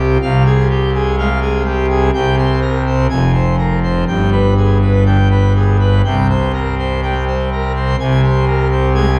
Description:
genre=classical, organ toccata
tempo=124 BPM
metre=4/4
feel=straight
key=unclear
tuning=A4 = 440 Hz
part: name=pipe organ, full organ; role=solo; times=0.0-9.2 s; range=F1 to Ab5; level=-14 LUFS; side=equal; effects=none
room=wet church reverb, RT60 2.7 s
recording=dark, warm production, vinyl crackle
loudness=-14 LUFS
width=mono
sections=0.0-9.2 A section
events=none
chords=0.2 Fm/C; 2.1 C5; 3.1 Fm; 4.1 G; 6.1 C5; 8.0 Abadd9/C

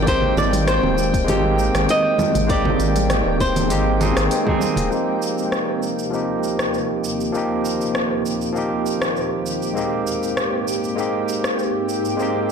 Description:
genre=sunset chillout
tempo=99 BPM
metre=4/4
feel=straight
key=Eb major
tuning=A4 = 440 Hz
part: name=flamenco guitar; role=melody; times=0.0-4.6 s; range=G4 to Eb5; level=-22 LUFS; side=equal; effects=tape echo
part: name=barky tine electric piano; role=accompaniment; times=0.0-12.5 s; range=F3 to Ab4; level=-22 LUFS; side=equal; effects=overdrive, auto-pan, low-pass filter, tape echo
part: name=shimmering ambient pad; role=sustained chords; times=0.0-12.5 s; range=Eb2 to G5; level=-26 LUFS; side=right 1 dB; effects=chorus, built-in reverb
part: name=round analog bass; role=bass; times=0.0-4.9 s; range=Eb1 to Ab1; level=-23 LUFS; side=equal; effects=none
part: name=drifting glass-harmonics texture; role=texture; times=0.0-4.9 s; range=G5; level=-35 LUFS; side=left 1 dB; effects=chorus, built-in reverb
part: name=electronic kick drum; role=drums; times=0.1-4.6 s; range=none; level=-24 LUFS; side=equal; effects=none
part: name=smooth R&B drum kit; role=drums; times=0.1-12.3 s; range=congas, hi-hat, rim click, shaker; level=-25 LUFS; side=right 1 dB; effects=soft clipping on snare
part: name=congas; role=percussion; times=0.2-4.9 s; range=none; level=-29 LUFS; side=right 3 dB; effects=none
room=moderate plate reverb, RT60 2.1 s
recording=blown-out, overdriven recording, overdrive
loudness=-18 LUFS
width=side -6 dB against mid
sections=0.0-4.9 A section; 4.9-12.5 B section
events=filter sweep on tine electric piano 4.9-12.5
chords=0.1 Abmaj7; 4.9 Eb6; 9.8 Abmaj7

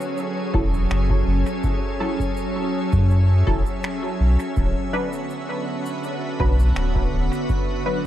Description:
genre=ambient dub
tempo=82 BPM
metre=4/4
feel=straight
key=F# minor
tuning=A4 = 439 Hz
part: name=soft additive organ-like pad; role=sustained chords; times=0.0-8.1 s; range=D3 to E5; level=-26 LUFS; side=right 1 dB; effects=ensemble chorus, built-in reverb
part: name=shaker and finger snaps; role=drums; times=0.0-7.6 s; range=none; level=-35 LUFS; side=equal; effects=dub echo
part: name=wind-like tuned noise texture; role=texture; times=0.0-8.1 s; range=C#4 to C#5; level=-32 LUFS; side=equal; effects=built-in reverb
part: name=filtered dub chord stab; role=stabs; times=0.5-8.0 s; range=F#3 to B4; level=-29 LUFS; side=equal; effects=phaser, analog chorus, dub echo
part: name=warm sub bass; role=bass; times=0.5-7.3 s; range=D1 to F#2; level=-18 LUFS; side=equal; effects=none
part: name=electronic kick drum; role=drums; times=0.5-7.6 s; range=none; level=-25 LUFS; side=equal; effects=none
room=small room ambience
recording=echo-heavy mix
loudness=-19 LUFS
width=side -12 dB against mid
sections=0.0-8.1 A section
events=none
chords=0.0 F#m7; 4.6 D6

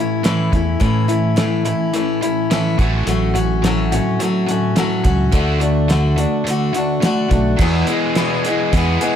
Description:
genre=folk rock and heartland rock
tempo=106 BPM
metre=4/4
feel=straight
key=A major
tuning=A4 = 440 Hz
part: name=picked steel-string acoustic guitar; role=accompaniment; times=0.0-9.2 s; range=E2 to G#4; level=-20 LUFS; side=left 4 dB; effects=none
part: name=overdriven electric guitar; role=riff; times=0.0-9.2 s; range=E2 to D4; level=-20 LUFS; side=right 2 dB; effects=none
part: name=cloth-damped thuddy drum kit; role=drums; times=0.2-9.1 s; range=crash cymbal, hi-hat, kick drum, snare drum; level=-20 LUFS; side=right 1 dB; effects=none
part: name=fingered electric bass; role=bass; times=0.5-9.0 s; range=A1 to A2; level=-18 LUFS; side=right 1 dB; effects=none
room=light reverb, studio ambience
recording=none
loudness=-15 LUFS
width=side -9 dB against mid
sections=0.0-7.6 A section; 7.6-9.2 B section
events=none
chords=0.0 A; 2.8 F#m/A; 5.3 D; 7.6 E

